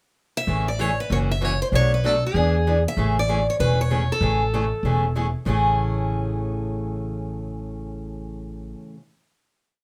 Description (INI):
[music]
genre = acoustic string swing (jazz manouche)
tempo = 192 BPM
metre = 4/4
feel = swing 60% on 8ths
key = A major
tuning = A4 = 438 Hz
[part]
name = picked steel-string acoustic guitar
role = melody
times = 0.4-5.1 s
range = G#4 to E5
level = -28 LUFS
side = equal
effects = none
[part]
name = picked acoustic archtop guitar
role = accompaniment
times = 0.5-9.0 s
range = A2 to G#4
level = -28 LUFS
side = equal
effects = none
[part]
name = upright bass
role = bass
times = 0.5-8.7 s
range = E1 to E2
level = -26 LUFS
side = equal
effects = none
[sound]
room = moderate studio reverb, RT60 0.5 s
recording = none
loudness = -22 LUFS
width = mono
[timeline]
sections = 0.0-0.5 pickup bar; 0.5-5.5 A section; 5.5-8.0 final chord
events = none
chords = 0.5 Amaj7; 1.1 F#7; 1.7 Bm7; 2.3 E7; 3.0 Amaj7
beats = 0.16 | 0.47 0.79 1.10 1.41 | 1.72 2.03 2.35 2.66 | 2.97 3.28 3.59 3.90 | 4.21 4.52 4.83 5.15 | 5.46 5.77 6.08 6.39 | 6.71 7.02 7.33 7.64